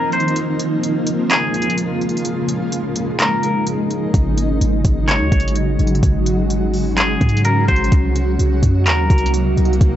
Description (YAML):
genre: hip hop, atmospheric cloud-rap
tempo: 127 BPM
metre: 4/4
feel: half-time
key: Bb minor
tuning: A4 = 441 Hz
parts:
  - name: twangy electric guitar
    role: melody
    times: 0.0-9.3 s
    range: Ab4 to Db5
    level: -22 LUFS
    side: left 2 dB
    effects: low-pass filter, analog delay
  - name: granular cloud pad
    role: sustained chords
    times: 0.0-10.0 s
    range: C3 to Gb4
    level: -19 LUFS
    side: right 1 dB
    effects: built-in reverb, sidechain pumping
  - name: smooth R&B drum kit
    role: drums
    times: 0.1-9.9 s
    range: handclaps, hi-hat, kick drum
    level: -18 LUFS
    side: equal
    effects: none
  - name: clean 808-style bass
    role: bass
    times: 4.1-10.0 s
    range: Ab1 to Ab2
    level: -18 LUFS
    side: equal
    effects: none
  - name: swell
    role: sound effects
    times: 9.2-10.0 s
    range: none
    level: -36 LUFS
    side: left 2 dB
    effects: none
room: digital ambience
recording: dry, gritty hardware recording, nothing above 7.8 kHz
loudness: -15 LUFS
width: side -11 dB against mid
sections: 0.0-10.0 A section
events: break 0.0-4.1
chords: 0.4 Bbm7; 4.1 Ab7sus4; 7.9 Cm7b5